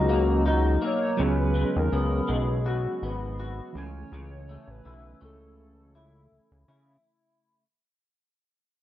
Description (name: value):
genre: indie pop, bedroom pop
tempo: 82 BPM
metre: 4/4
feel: swing 55% on 16ths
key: unclear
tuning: A4 = 441 Hz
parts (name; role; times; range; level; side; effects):
- hollow clarinet-like synth lead; melody; 0.0-6.7 s; F#4 to C#5; -31 LUFS; left 2 dB; phaser, analog chorus
- electric guitar through a small old amp; accompaniment; 0.0-7.6 s; B2 to F#4; -30 LUFS; left 2 dB; analog chorus, vibrato effect
- soft electric-piano-like synth keys; accompaniment; 0.0-7.1 s; E3 to A#5; -33 LUFS; right 4 dB; chorus, tremolo, cassette tape
- fat analog bass; bass; 0.0-7.0 s; G#1 to C#3; -26 LUFS; equal; none
room: light reverb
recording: cassette tape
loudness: -23 LUFS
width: side -13 dB against mid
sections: 0.0-7.0 A section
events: fade-out 0.0-7.0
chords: 0.0 Bmaj7; 1.2 C#7sus4; 3.8 Amaj7